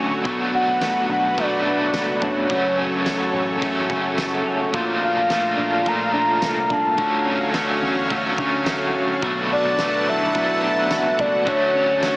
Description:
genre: dream pop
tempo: 107 BPM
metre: 4/4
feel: straight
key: unclear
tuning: A4 = 439 Hz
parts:
  - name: crunchy overdriven guitar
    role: accompaniment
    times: 0.0-12.2 s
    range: F#2 to D4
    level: -24 LUFS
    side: equal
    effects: tremolo, wide subtle chorus
  - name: lush unison pad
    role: sustained chords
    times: 0.0-12.2 s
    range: F4 to Bb5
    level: -25 LUFS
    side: equal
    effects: chorus
  - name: semi-hollow electric guitar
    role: arpeggios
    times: 0.0-12.2 s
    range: F#2 to F#4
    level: -26 LUFS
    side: left 1 dB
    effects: analog chorus, digital delay
  - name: vintage muted picked electric bass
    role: bass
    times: 0.3-12.1 s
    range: E1 to E2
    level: -36 LUFS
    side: equal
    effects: none
  - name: oversized low-tuned drum kit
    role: drums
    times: 0.3-12.2 s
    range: kick drum, ride cymbal, snare drum, tambourine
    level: -31 LUFS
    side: equal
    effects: none
  - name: soft octave-layered synth lead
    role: melody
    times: 0.5-12.2 s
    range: C#5 to Bb5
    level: -22 LUFS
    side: equal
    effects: chorus, phaser, digital delay
room: moderate shimmer reverb, RT60 4.2 s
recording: heavily compressed radio sound, small speaker sound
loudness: -18 LUFS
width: side -22 dB against mid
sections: 0.0-12.2 A section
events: none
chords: 0.3 Bm7; 2.5 F#m; 4.7 Bbmaj7; 7.0 Dmaj7; 9.2 Bm7; 11.5 Dmaj7

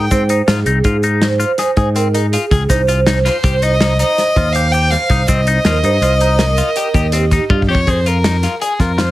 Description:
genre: progressive instrumental, band music in an uneven meter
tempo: 162 BPM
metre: 7/4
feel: straight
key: F minor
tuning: A4 = 439 Hz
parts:
  - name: warm violin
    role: melody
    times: 0.0-9.1 s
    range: Ab4 to G5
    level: -18 LUFS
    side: equal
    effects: none
  - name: vibraphone with soft mallets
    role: second line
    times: 0.0-7.6 s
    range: G4 to C5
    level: -19 LUFS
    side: right 4 dB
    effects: none
  - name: clean electric guitar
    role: arpeggios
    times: 0.0-9.1 s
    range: C4 to Ab4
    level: -21 LUFS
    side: left 4 dB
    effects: phaser, ping-pong delay
  - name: picked electric bass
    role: bass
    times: 0.0-9.1 s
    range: C2 to Ab2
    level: -16 LUFS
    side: equal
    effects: none
  - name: warm soul drum kit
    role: drums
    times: 0.1-9.1 s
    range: hi-hat, kick drum, snare drum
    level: -18 LUFS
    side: equal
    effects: none
  - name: egg shaker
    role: percussion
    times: 0.1-7.4 s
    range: none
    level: -32 LUFS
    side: right 4 dB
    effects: none
room: light reverb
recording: heavily compressed radio sound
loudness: -12 LUFS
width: side -16 dB against mid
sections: 0.0-7.9 A section; 7.9-9.1 B section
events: drum fill 7.5-7.9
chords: 0.1 Fm7; 2.7 Cm; 7.9 Fm

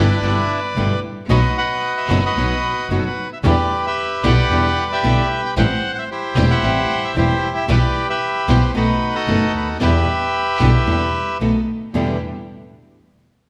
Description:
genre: tango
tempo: 113 BPM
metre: 4/4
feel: rubato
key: E minor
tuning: A4 = 443 Hz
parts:
  - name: bandoneon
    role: melody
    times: 0.0-11.4 s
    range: D4 to G5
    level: -22 LUFS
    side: equal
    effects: none
  - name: nylon-string guitar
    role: accompaniment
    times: 0.0-12.2 s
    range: E2 to F#4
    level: -25 LUFS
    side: equal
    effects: none
  - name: rich studio string section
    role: stabs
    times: 0.0-12.2 s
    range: A3 to A4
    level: -30 LUFS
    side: equal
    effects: none
  - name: clear double bass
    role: bass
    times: 0.0-12.2 s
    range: E1 to E2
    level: -22 LUFS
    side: equal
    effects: none
room: moderate recital hall reverb, RT60 1.5 s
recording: none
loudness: -18 LUFS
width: mono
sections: 0.0-11.9 A section; 11.9-13.5 B section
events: none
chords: 0.0 Em7/G; 1.3 B; 3.4 Em7; 5.6 Am7; 7.7 Em/B; 8.7 B7; 9.8 Em7; 11.4 B7; 11.9 Em7

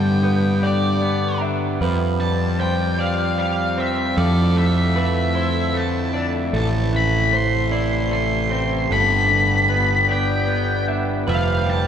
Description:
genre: post-rock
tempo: 76 BPM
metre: 3/4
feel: straight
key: unclear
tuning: A4 = 440 Hz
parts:
  - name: octave-fuzz lead guitar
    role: melody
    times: 0.0-11.9 s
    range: D5 to C6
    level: -23 LUFS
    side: left 1 dB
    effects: distortion
  - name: pipe organ, cornet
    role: sustained chords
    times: 0.0-11.9 s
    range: C3 to G4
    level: -28 LUFS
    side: right 1 dB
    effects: none
  - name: electric guitar at the edge of break-up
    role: arpeggios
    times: 0.0-11.9 s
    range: G2 to G4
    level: -26 LUFS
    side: equal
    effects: none
  - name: electric guitar through a small old amp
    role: arpeggios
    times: 0.0-11.9 s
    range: A4 to E5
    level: -28 LUFS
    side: equal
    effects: vibrato effect
  - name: fuzz picked electric bass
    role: bass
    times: 0.0-11.9 s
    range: F1 to G2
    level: -21 LUFS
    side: equal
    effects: overdrive
room: wet cathedral reverb, RT60 5.0 s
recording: recorded in a church or concert hall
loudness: -17 LUFS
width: side -8 dB against mid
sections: 0.0-11.9 A section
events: none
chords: 0.0 G; 1.8 Fsus2; 4.2 Dmadd9/F; 6.5 Am; 8.9 G; 11.3 Fsus2

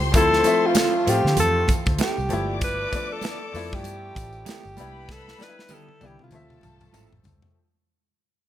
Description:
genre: lush 1970s-style soul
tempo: 97 BPM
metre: 4/4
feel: swing 58% on 16ths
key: D dorian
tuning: A4 = 440 Hz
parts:
  - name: warm studio string section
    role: second line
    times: 0.0-7.2 s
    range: A4 to D6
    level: -34 LUFS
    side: left 4 dB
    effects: none
  - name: clear grand piano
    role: accompaniment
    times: 0.0-7.6 s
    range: F3 to E5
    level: -28 LUFS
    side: left 2 dB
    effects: none
  - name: vintage muted fingered electric bass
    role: bass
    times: 0.0-7.4 s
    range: G1 to D3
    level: -28 LUFS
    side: equal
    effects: none
  - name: modern studio drum kit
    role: drums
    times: 0.1-7.5 s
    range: hi-hat, kick drum, snare drum, toms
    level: -24 LUFS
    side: equal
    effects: none
  - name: tambourine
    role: percussion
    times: 0.1-7.4 s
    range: none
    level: -37 LUFS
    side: left 12 dB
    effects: none
  - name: warm alto saxophone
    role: melody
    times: 0.2-7.2 s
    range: F4 to B4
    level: -24 LUFS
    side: left 1 dB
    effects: tape echo
  - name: congas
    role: percussion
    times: 0.4-7.4 s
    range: none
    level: -32 LUFS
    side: right 4 dB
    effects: none
  - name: electric guitar through a small old amp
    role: riff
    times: 0.8-7.1 s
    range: F3 to A4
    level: -34 LUFS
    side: right 10 dB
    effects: none
room: light reverb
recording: none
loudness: -19 LUFS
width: side -12 dB against mid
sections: 0.0-7.6 A section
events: fade-out 0.0-7.6; drum fill 5.1-7.6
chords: 0.0 Dm9; 2.3 G13; 4.8 Cmaj7; 6.3 Dm9

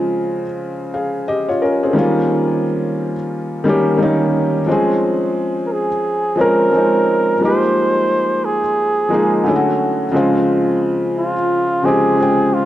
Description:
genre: hip hop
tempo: 88 BPM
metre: 4/4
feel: swing 62% on 16ths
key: unclear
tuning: A4 = 441 Hz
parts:
  - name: felt-muted upright piano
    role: accompaniment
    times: 0.0-12.7 s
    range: Db3 to G5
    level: -16 LUFS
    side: left 1 dB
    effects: cassette tape
  - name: mellow flugelhorn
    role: melody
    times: 5.7-12.7 s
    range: F4 to C5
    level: -17 LUFS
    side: right 2 dB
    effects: analog delay
room: moderate plate reverb, RT60 2.7 s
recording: cassette tape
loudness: -14 LUFS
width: side -13 dB against mid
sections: 0.0-12.7 A section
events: none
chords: 0.0 Dbmaj7; 2.0 Eb9; 4.7 Dbmaj7; 7.4 Fm11; 9.5 Dmaj7; 10.1 Dbmaj7

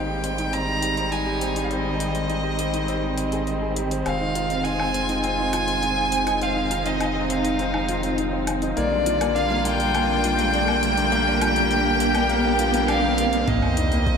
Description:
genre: piano and strings electronica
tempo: 102 BPM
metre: 4/4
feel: straight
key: unclear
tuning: A4 = 442 Hz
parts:
  - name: rich violin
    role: melody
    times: 0.0-14.2 s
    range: D5 to Bb5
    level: -24 LUFS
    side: left 1 dB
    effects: analog delay
  - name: muted string quartet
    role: sustained chords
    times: 0.0-14.2 s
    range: D3 to G4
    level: -28 LUFS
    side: right 1 dB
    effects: sidechain pumping
  - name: warm grand piano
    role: riff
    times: 0.0-14.2 s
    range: Bb3 to Eb5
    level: -26 LUFS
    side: equal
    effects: analog delay
  - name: round analog bass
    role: bass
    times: 0.0-14.2 s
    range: F1 to C2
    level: -29 LUFS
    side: equal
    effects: sidechain pumping
  - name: electronic hi-hat and woodblock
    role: drums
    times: 0.2-14.2 s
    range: none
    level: -33 LUFS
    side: left 3 dB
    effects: overdrive, high-pass filter on hats, high-pass filter on perc, high-pass filter on room
  - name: riser and sub drop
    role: sound effects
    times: 7.8-14.2 s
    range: none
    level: -29 LUFS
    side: right 1 dB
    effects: none
  - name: electronic kick drum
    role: drums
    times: 13.5-14.2 s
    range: none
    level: -26 LUFS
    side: equal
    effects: overdrive
room: wet cathedral reverb, RT60 6.2 s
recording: dreamy mix soaked in reverb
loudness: -20 LUFS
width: side -6 dB against mid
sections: 0.0-13.5 A section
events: build-up 0.0-13.5; riser 7.8-13.5; impact 13.5-14.2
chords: 0.0 Abmaj7; 4.1 Fm7; 8.8 Bb6; 13.5 Cm7

